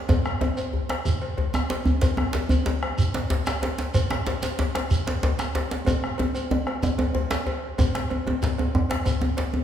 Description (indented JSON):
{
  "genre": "west african traditional, West African drum ensemble",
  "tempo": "125 BPM (dotted quarters)",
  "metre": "12/8",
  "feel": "straight",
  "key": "none",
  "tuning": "none",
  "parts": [
    { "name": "bombo", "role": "percussion", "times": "0.1-9.1 s", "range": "none", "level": "-28 LUFS", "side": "right 1 dB", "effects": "none" },
    { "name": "cowbell", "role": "percussion", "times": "0.1-9.5 s", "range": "none", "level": "-33 LUFS", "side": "equal", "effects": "none" },
    { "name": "djembe", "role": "percussion", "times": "0.1-9.5 s", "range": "none", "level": "-30 LUFS", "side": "left 3 dB", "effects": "none" },
    { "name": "djembe", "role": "percussion", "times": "0.1-9.6 s", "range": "none", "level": "-25 LUFS", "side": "equal", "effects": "none" },
    { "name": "shekere", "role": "percussion", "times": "0.1-9.5 s", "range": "none", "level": "-33 LUFS", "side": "right 1 dB", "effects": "none" }
  ],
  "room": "wet recital hall reverb, RT60 1.8 s",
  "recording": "recorded in a church or concert hall",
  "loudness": "-22 LUFS",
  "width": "side -10 dB against mid",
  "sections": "0.0-7.8 A section; 7.8-9.6 A section",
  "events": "drum fill 5.9-7.8",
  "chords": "none"
}